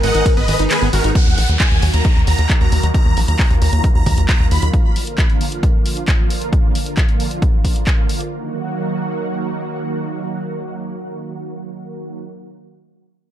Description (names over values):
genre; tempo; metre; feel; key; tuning
uplifting trance; 134 BPM; 4/4; straight; Eb harmonic minor; A4 = 440 Hz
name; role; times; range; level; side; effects
big supersaw lead; melody; 0.0-4.7 s; Gb4 to Cb6; -23 LUFS; right 1 dB; phaser, sidechain pumping, digital delay
warm velvety synth lead; second line; 0.0-1.1 s; Bb4; -22 LUFS; equal; chorus, dub echo
analog string pad; sustained chords; 0.0-12.2 s; D3 to Ab4; -24 LUFS; right 1 dB; ensemble chorus, sidechain pumping
liquid acid bass; arpeggios; 0.0-1.1 s; Eb3 to Eb4; -26 LUFS; right 3 dB; lush chorus, sidechain pumping, digital delay
tight sequencer bass; bass; 0.0-4.7 s; Ab1 to Eb2; -16 LUFS; equal; sidechain pumping
punchy analog drum machine; drums; 0.0-8.3 s; handclaps, hi-hat, ride cymbal; -24 LUFS; left 1 dB; sidechain pumping on hats, sidechain pumping on cymbals
electronic kick drum; drums; 0.3-8.0 s; none; -16 LUFS; equal; none
downlifter; sound effects; 1.2-4.7 s; none; -28 LUFS; equal; none
room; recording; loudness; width
digital ambience; dark, warm production; -14 LUFS; side -11 dB against mid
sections
0.0-1.2 A section; 1.2-8.3 B section; 8.3-11.9 C section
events
drop 0.0-1.2; kick drops out 0.7-1.2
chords
0.0 Abm; 1.2 Ebm; 4.7 Bb; 8.3 Ebm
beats
0.26 0.70 | 1.15 1.60 2.05 2.50 | 2.94 3.39 3.84 4.29 | 4.74 5.18 5.63 6.08 | 6.53 6.97 7.42 7.87 | 8.32 8.77 9.21 9.66 | 10.11 10.56 11.00 11.45